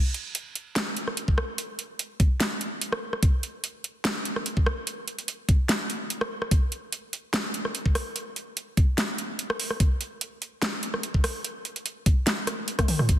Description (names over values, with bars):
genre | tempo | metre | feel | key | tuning
dubstep | 146 BPM | 4/4 | swing 53% on 16ths, half-time | none | none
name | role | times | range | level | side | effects
dubstep drum kit | drums | 0.1-13.2 s | hi-hat, rim click, snare drum, toms | -27 LUFS | equal | none
electronic kick drum | drums | 1.3-13.2 s | none | -21 LUFS | equal | none
room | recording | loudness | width
light reverb | dense, heavily limited modern master | -25 LUFS | side -12 dB against mid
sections
0.0-13.2 A section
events
drum fill 12.8-13.1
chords
none